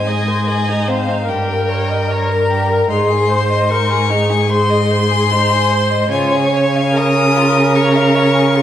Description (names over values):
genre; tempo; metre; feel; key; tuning
classical, slow romantic movement for string quartet; 74 BPM; 4/4; rubato; unclear; A4 = 439 Hz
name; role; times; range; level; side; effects
warm violin; melody; 0.0-8.6 s; F5 to Eb6; -19 LUFS; left 6 dB; none
rich violin; second line; 0.0-8.6 s; C4 to F5; -20 LUFS; left 2 dB; none
warm viola; accompaniment; 0.0-8.6 s; Ab4 to Eb5; -19 LUFS; right 1 dB; none
rich cello; bass; 0.0-8.6 s; G2 to Db3; -16 LUFS; right 2 dB; none
room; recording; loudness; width
wet recital hall reverb, RT60 1.6 s; heard from further back in the room; -12 LUFS; side -10 dB against mid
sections
0.0-8.6 A section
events
none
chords
0.0 Ab; 1.3 Eb7/G (rootless); 2.9 Ab; 6.1 Db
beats
0.48 1.30 2.11 | 2.91 3.71 4.51 5.31 | 6.12 6.97 7.76 8.56